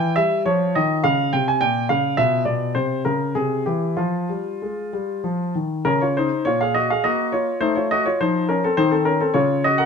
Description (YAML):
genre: classical, baroque-style suite movement for grand piano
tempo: 94-105 BPM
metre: 3/4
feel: rubato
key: F minor, Bb minor from 5.9 s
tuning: A4 = 444 Hz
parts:
  - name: warm grand piano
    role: solo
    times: 0.0-9.9 s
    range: Bb2 to Ab5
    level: -18 LUFS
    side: left 1 dB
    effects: none
room: moderate stone room reverb, RT60 1.1 s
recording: minimal, uncompressed stereo recording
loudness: -18 LUFS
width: side -6 dB against mid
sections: 0.0-5.9 A section; 5.9-9.9 A section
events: none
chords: 0.5 Db; 1.6 Gm7b5/Bb; 2.2 Bdim; 2.8 Bbmadd9/C; 3.4 C; 4.0 Fm; 5.9 Bbm; 7.6 F7; 9.4 Bbm/Db